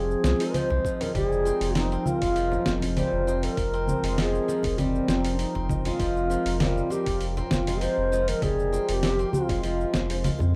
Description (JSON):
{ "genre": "organic downtempo", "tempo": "99 BPM", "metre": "4/4", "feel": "swing 53% on 16ths", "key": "F minor", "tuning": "A4 = 440 Hz", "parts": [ { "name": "mellow bass bansuri", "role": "melody", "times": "0.0-10.2 s", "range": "C4 to C5", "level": "-30 LUFS", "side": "equal", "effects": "vintage 12-bit sampler grit, tape echo" }, { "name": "felt-muted upright piano", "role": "accompaniment", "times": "0.0-10.2 s", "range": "Ab3 to Eb5", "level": "-41 LUFS", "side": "equal", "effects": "none" }, { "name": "warm analog pad", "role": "sustained chords", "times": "0.0-10.6 s", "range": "F3 to Bb4", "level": "-35 LUFS", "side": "equal", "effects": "subtle chorus, sidechain pumping" }, { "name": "steel-string zither", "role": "arpeggios", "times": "0.0-10.6 s", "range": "F3 to F4", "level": "-37 LUFS", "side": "equal", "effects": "vintage 12-bit sampler grit, delay" }, { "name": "round analog bass", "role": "bass", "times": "0.0-10.6 s", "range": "F1 to F2", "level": "-31 LUFS", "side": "equal", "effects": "none" }, { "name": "dusty soul sampler-style drum kit", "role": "drums", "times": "0.1-10.5 s", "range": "cabasa, congas, hi-hat, snare drum", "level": "-32 LUFS", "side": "equal", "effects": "overdrive" }, { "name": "bongos and congas", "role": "percussion", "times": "0.4-10.5 s", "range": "none", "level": "-43 LUFS", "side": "equal", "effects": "none" }, { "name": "electronic kick drum", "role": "drums", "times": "0.7-10.5 s", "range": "none", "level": "-35 LUFS", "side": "equal", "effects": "overdrive" } ], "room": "studio reverb", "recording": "rough home demo mix", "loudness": "-25 LUFS", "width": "mono", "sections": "0.0-10.6 A section", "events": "none", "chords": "0.0 Fm", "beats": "0.54 | 1.15 1.75 2.36 2.97 | 3.57 4.18 4.79 5.39 | 6.00 6.60 7.21 7.82 | 8.42 9.03 9.63 10.24" }